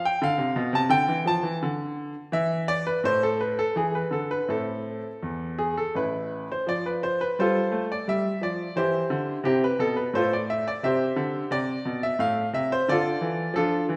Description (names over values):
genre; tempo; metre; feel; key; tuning
classical, baroque-style suite movement for grand piano; 81-90 BPM; 3/4; rubato; unclear; A4 = 440 Hz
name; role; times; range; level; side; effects
bright baby grand piano; solo; 0.0-14.0 s; A1 to A5; -26 LUFS; equal; none
room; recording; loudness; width
wet stone room reverb, RT60 1.6 s; heard from further back in the room; -26 LUFS; mono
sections
0.0-6.7 A section; 6.7-14.0 A section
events
none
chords
0.2 Bdim (rootless); 2.3 N.C.; 3.7 E7; 4.5 Am; 6.7 F; 8.1 G5; 8.8 C; 10.1 F/A; 10.8 C; 12.2 Am; 12.9 Dm